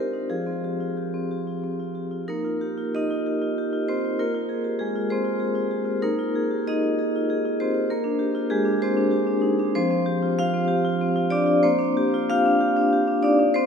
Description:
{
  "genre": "classical, contemporary piece for solo vibraphone",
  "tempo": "59-67 BPM (dotted quarters)",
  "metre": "6/8",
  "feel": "rubato",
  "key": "F dorian",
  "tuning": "A4 = 440 Hz",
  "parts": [
    { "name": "vibraphone with medium hard mallets", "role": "solo", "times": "0.0-13.7 s", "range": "F3 to F5", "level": "-21 LUFS", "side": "equal", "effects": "none" }
  ],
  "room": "wet cathedral reverb, RT60 5.4 s",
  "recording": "minimal, uncompressed stereo recording",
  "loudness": "-21 LUFS",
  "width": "side -6 dB against mid",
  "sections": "0.0-2.3 A section; 2.3-13.7 A section",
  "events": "none",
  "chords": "0.3 Fmadd9; 2.3 Ebadd9; 4.2 Fm; 6.0 Ebsus24; 7.9 Bb13; 9.8 Fsus2; 11.6 Bb69"
}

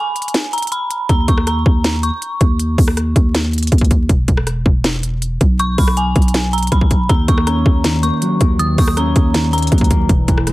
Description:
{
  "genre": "hip hop, trap",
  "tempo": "160 BPM",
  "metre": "4/4",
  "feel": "half-time",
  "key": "Eb phrygian",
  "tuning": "A4 = 440 Hz",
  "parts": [
    { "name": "dark detuned synth bell", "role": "melody", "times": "0.0-2.6, 5.6-10.1 s", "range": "Ab5 to Eb6", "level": "-21 LUFS", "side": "equal", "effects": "chorus, digital delay" },
    { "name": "trap drum kit", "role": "drums", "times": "0.2-10.5 s", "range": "hi-hat, kick drum, rim click, snare drum", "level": "-14 LUFS", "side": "equal", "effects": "none" },
    { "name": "growling 808-style bass", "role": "bass", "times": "1.1-10.5 s", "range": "E1 to Eb2", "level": "-17 LUFS", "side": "equal", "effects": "none" },
    { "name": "mellow electric guitar", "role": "accompaniment", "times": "7.1-10.5 s", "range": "E2 to Db4", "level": "-18 LUFS", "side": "equal", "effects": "none" }
  ],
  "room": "little or no reverb",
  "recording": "dense, heavily limited modern master, vinyl crackle",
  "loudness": "-13 LUFS",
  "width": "side -18 dB against mid",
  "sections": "0.0-10.5 A section",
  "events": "break 0.0-1.1",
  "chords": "0.0 N.C.; 1.1 Eb5; 4.1 E5; 5.6 Abm/Cb; 7.1 Ebm7"
}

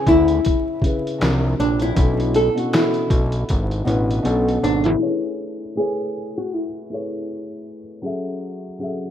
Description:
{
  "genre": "lo-fi hip hop",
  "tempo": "79 BPM",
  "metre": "4/4",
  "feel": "swing 58% on 16ths",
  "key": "unclear",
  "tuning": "A4 = 439 Hz",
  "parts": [
    { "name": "flamenco guitar", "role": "melody", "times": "0.0-7.7 s", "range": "C#4 to A4", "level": "-21 LUFS", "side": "left 1 dB", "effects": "none" },
    { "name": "felt-muted upright piano", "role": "accompaniment", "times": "0.0-9.1 s", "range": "B2 to E5", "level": "-25 LUFS", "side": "left 1 dB", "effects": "cassette tape" },
    { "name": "fat analog bass", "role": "bass", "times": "0.1-5.0 s", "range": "G#1 to D2", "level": "-21 LUFS", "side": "equal", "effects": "none" },
    { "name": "lo-fi sampler-style drum kit", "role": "drums", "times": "0.1-5.0 s", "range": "finger snaps, hi-hat, kick drum, snare drum", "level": "-22 LUFS", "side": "equal", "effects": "none" }
  ],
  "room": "light reverb, digital ambience",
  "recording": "rough home demo mix, vinyl crackle, low-pass filter",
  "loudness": "-18 LUFS",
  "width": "side -10 dB against mid",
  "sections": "0.0-5.0 A section; 5.0-9.1 B section",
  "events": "drum fill 3.5-5.0",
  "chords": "0.0 C#m7; 1.2 C9sus4; 2.0 Bm11; 4.2 Bm7; 5.0 Amaj7; 8.0 F#m7"
}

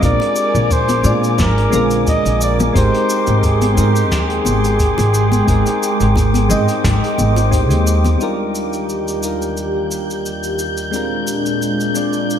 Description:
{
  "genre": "sunset chillout",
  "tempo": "88 BPM",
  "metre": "4/4",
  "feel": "swing 54% on 16ths",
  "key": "Ab lydian",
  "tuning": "A4 = 440 Hz",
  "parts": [
    { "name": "mellow flugelhorn", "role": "melody", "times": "0.0-7.5 s", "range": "G4 to Eb5", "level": "-21 LUFS", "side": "left 1 dB", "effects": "digital delay" },
    { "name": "soft electric-piano-like synth keys", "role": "accompaniment", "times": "0.0-12.4 s", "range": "D3 to G5", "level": "-20 LUFS", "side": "right 1 dB", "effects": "chorus, auto-pan, digital delay" },
    { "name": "airy breathy pad", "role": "sustained chords", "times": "0.0-12.4 s", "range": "Eb2 to D6", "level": "-22 LUFS", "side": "left 1 dB", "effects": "chorus" },
    { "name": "upright bass", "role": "bass", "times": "0.0-8.1 s", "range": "Ab1 to Bb2", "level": "-16 LUFS", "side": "equal", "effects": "none" },
    { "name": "electronic kick drum", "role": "drums", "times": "0.0-7.7 s", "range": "none", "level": "-18 LUFS", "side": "equal", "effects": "overdrive" },
    { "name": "soft brush drum kit", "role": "drums", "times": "0.0-12.4 s", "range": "cabasa, hi-hat, snare drum", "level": "-26 LUFS", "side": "equal", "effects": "gated reverb" },
    { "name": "wind-like tuned noise texture", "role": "texture", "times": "0.0-12.4 s", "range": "D6 to G6", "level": "-26 LUFS", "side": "left 2 dB", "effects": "built-in reverb, wide subtle chorus" },
    { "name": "bongos and congas", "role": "percussion", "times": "0.2-8.2 s", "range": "none", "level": "-24 LUFS", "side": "left 3 dB", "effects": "none" }
  ],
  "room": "moderate plate reverb, RT60 1.8 s, small room ambience",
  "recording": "bright 1980s-style digital production",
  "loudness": "-13 LUFS",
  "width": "side -9 dB against mid",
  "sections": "0.0-8.2 A section; 8.2-12.4 B section",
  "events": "none",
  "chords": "0.0 Bb7; 2.8 Abmaj7; 8.2 Ebmaj7; 10.9 Bb7"
}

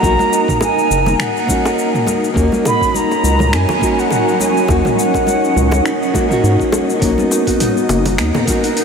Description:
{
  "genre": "sunset chillout",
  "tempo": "103 BPM",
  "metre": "4/4",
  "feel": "swing 56% on 16ths",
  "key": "B major",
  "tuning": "A4 = 439 Hz",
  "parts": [
    { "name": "mellow concert flute", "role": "melody", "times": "0.0-6.4 s", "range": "F#5 to B5", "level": "-19 LUFS", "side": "right 1 dB", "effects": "ping-pong delay" },
    { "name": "nylon-string guitar", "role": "accompaniment", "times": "0.0-8.8 s", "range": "A#3 to A#4", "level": "-19 LUFS", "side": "equal", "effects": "auto-pan, analog delay" },
    { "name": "shimmering ambient pad", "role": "sustained chords", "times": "0.0-8.8 s", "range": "F#3 to A#4", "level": "-20 LUFS", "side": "right 1 dB", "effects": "chorus, built-in reverb" },
    { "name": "round analog bass", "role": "bass", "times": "0.0-8.3 s", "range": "F#1 to G#2", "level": "-16 LUFS", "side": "equal", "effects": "none" },
    { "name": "deep house drum kit", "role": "drums", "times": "0.0-8.8 s", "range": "cabasa, finger snaps, hi-hat, toms", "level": "-22 LUFS", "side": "equal", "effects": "overdrive, studio reverb" },
    { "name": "electronic kick drum", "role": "drums", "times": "0.0-8.6 s", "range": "none", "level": "-21 LUFS", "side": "equal", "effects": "overdrive, studio reverb" },
    { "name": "bongos and congas", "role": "percussion", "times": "0.0-8.6 s", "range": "none", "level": "-24 LUFS", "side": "equal", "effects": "none" },
    { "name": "Celtic harp", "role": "arpeggios", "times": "7.0-8.8 s", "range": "A#3 to F#4", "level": "-18 LUFS", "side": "left 4 dB", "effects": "analog delay" }
  ],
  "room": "wet huge ambient reverb, RT60 7.6 s",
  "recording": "dreamy mix soaked in reverb",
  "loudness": "-12 LUFS",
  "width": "side -6 dB against mid",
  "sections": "0.0-8.8 A section",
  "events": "none",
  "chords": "0.0 Bmaj7 (rootless); 2.4 D#m7; 7.0 Bmaj7"
}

